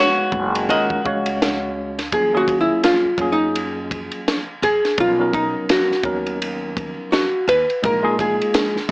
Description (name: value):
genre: hip hop, jazz-hop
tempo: 84 BPM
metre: 4/4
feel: swing 59% on 16ths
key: Eb minor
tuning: A4 = 443 Hz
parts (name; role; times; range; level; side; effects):
- archtop guitar, miked and amplified; melody; 0.0-8.9 s; Eb4 to Eb5; -18 LUFS; equal; none
- electric guitar at the edge of break-up; second line; 0.0-1.7 s; Gb4; -22 LUFS; left 1 dB; lush chorus
- tine electric piano; accompaniment; 0.0-8.9 s; F3 to F5; -23 LUFS; equal; overdrive, medium stereo tremolo
- upright bass; bass; 0.3-8.9 s; Gb1 to Gb2; -29 LUFS; equal; none
- compact cocktail drum kit; drums; 0.3-8.9 s; hi-hat, kick drum, ride cymbal, snare drum; -23 LUFS; equal; none
room: light reverb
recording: small speaker sound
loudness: -17 LUFS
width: side -26 dB against mid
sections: 0.0-2.1 A section; 2.1-8.9 B section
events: hollow-body jazz guitar solo 2.1-8.9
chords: 0.0 Abm7; 0.7 Ebm11; 5.0 Bmaj9; 7.8 Bb7sus4